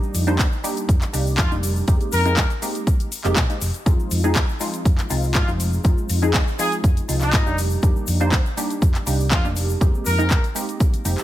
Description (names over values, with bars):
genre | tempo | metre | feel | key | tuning
filtered disco house | 121 BPM | 4/4 | straight | F dorian | A4 = 440 Hz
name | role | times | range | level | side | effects
funky polysynth comp | accompaniment | 0.0-11.2 s | F3 to C5 | -26 LUFS | equal | chorus, phaser, sidechain pumping
hollow-body short-scale fingered electric bass | bass | 0.0-11.2 s | F1 to Bb2 | -22 LUFS | equal | sidechain pumping
house drum kit | drums | 0.0-11.2 s | cabasa, handclaps, hi-hat | -26 LUFS | left 1 dB | overdrive, studio reverb
egg shaker | percussion | 0.0-11.2 s | none | -36 LUFS | left 7 dB | none
electronic kick drum | drums | 0.4-10.9 s | none | -19 LUFS | equal | overdrive, studio reverb
warm horn section | melody | 1.4-10.4 s | Eb4 to Bb4 | -26 LUFS | left 1 dB | sidechain pumping
room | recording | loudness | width
digital ambience | none | -18 LUFS | side -14 dB against mid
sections
0.0-11.2 A section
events
none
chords
0.0 Ebmaj7/F; 1.9 Abmaj9/F; 3.9 Fm7; 7.6 Ebmaj7/F; 9.8 Abmaj9/F